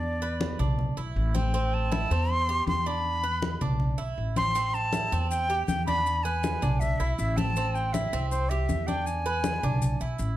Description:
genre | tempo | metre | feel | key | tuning
latin, Cuban son and guajira | 159 BPM | 4/4 | straight | A minor | A4 = 439 Hz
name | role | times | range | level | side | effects
jazz flute | melody | 0.0-10.2 s | C5 to C6 | -29 LUFS | equal | none
Cuban tres | arpeggios | 0.0-10.4 s | C4 to B4 | -34 LUFS | right 4 dB | none
upright bass | bass | 0.0-10.4 s | A1 to E2 | -29 LUFS | equal | none
congas | percussion | 0.0-10.4 s | none | -32 LUFS | left 1 dB | none
maracas | percussion | 4.6-10.4 s | none | -44 LUFS | left 7 dB | none
room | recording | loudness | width
light reverb | dark, warm production | -25 LUFS | side -14 dB against mid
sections
0.0-10.4 A section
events
none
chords
0.0 E5; 1.5 Am7; 3.0 E5; 4.6 Am7; 6.1 E7; 7.6 Am7; 9.1 E7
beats
| 0.03 0.41 0.79 1.16 | 1.54 1.92 2.29 2.67 | 3.04 3.42 3.80 4.17 | 4.55 4.93 5.30 5.68 | 6.06 6.43 6.81 7.19 | 7.56 7.94 8.32 8.69 | 9.07 9.45 9.82 10.20

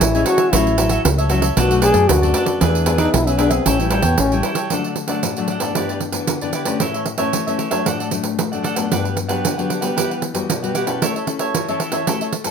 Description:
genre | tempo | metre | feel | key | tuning
samba and choro | 114 BPM | 4/4 | straight | A major, D major from 4.7 s | A4 = 439 Hz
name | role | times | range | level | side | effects
breathy trombone | melody | 0.0-4.3 s | E3 to G#4 | -18 LUFS | left 2 dB | none
cavaquinho | accompaniment | 0.0-12.4 s | D4 to G#5 | -23 LUFS | right 3 dB | none
nylon-string guitar | accompaniment | 0.0-12.5 s | F#2 to A4 | -23 LUFS | left 7 dB | none
woody fretless electric bass | bass | 0.0-4.4 s | A1 to F#2 | -19 LUFS | equal | none
pandeiro | percussion | 0.0-12.5 s | none | -21 LUFS | right 6 dB | none
room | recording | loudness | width
moderate studio reverb, RT60 0.8 s | none | -16 LUFS | side -7 dB against mid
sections
0.0-4.7 A section; 4.7-12.5 B section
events
trombone solo 0.0-4.7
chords
0.0 Amaj7; 0.5 F#m7/A; 1.6 Bm7; 2.6 E7; 3.7 A7; 4.7 D; 5.8 G6; 6.8 A; 7.9 D/A; 8.9 Gmaj7; 10.0 Emadd9; 11.0 A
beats
0.01 | 0.53 1.05 1.57 2.10 | 2.62 3.14 3.66 4.19 | 4.71 5.24 5.76 6.29 | 6.81 7.34 7.86 8.39 | 8.92 9.44 9.97 10.49 | 11.02 11.55 12.07

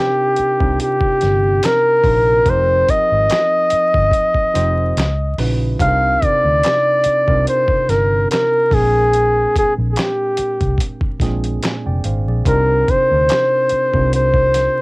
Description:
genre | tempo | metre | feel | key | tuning
R&B, neo-soul | 72 BPM | 4/4 | swing 54% on 16ths | C minor | A4 = 440 Hz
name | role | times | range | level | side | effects
warm flugelhorn | melody | 0.0-14.8 s | G4 to F5 | -14 LUFS | equal | cassette tape
barky tine electric piano | accompaniment | 0.0-14.8 s | Bb2 to Ab5 | -24 LUFS | right 2 dB | cassette tape
vintage muted fingered electric bass | bass | 0.4-14.7 s | F1 to D2 | -19 LUFS | equal | tube saturation
dusty soul sampler-style drum kit | drums | 0.4-14.8 s | handclaps, hi-hat, kick drum, snare drum | -20 LUFS | equal | none
room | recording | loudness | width
moderate booth ambience, RT60 0.2 s | home recording on cassette, vinyl crackle | -13 LUFS | side -25 dB against mid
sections
0.0-14.8 A section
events
none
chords
0.0 Cm11; 2.5 F7sus4; 5.0 Dbm11; 5.8 Cm11; 8.7 Bb9; 12.5 Cm11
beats
0.79 1.63 | 2.46 3.29 4.13 4.96 | 5.79 6.63 7.46 8.29 | 9.13 9.96 10.79 11.63 | 12.46 13.29 14.13

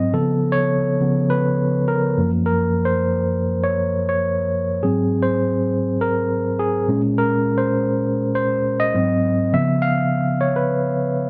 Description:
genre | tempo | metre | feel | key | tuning
soul | 102 BPM | 4/4 | straight | unclear | A4 = 439 Hz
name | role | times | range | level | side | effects
tine electric piano | solo | 0.0-11.3 s | Gb2 to F5 | -20 LUFS | equal | none
room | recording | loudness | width
light reverb | dry, close 1970s-style studio recording | -20 LUFS | mono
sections
0.0-11.3 A section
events
tine electric piano solo 0.0-11.3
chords
0.1 Dbaug7; 2.2 Gbmaj7; 4.8 Ab9; 6.9 Bbm9; 9.0 Ab7; 9.5 Db7#9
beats
| 0.13 0.72 1.31 1.90 | 2.48 3.07 3.66 4.25 | 4.84 5.42 6.01 6.60 | 7.19 7.78 8.36 8.95 | 9.54 10.13 10.71

